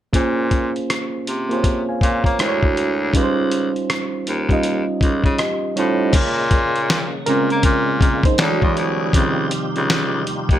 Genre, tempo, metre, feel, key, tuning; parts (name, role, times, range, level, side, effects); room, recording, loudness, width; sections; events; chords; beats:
R&B, neo-soul; 80 BPM; 4/4; swing 63% on 16ths; Bb dorian; A4 = 440 Hz
overdriven reed electric piano; accompaniment; 0.1-10.6 s; Db3 to Ab5; -21 LUFS; right 2 dB
clear baritone saxophone; bass; 0.1-10.6 s; C2 to Bb3; -21 LUFS; left 1 dB
dusty soul sampler-style drum kit; drums; 0.1-10.6 s; crash cymbal, finger snaps, hi-hat, kick drum, rim click, snare drum; -19 LUFS; left 1 dB
tonewheel organ; sustained chords; 6.1-10.6 s; C3 to G#4; -26 LUFS; left 2 dB; slow rotary speaker, chorus vibrato
light reverb; -16 LUFS; side -12 dB against mid
0.1-6.1 A section; 6.1-10.6 B section
reed electric piano solo 6.1-10.6
0.1 Bbm9; 2.4 Dmaj9#11; 3.1 Dbmaj9#11; 6.1 Bbm9; 8.4 Dmaj9#11; 9.1 Dbmaj9#11
| 0.13 0.88 1.63 2.38 | 3.13 3.88 4.63 5.38 | 6.13 6.88 7.63 8.38 | 9.13 9.88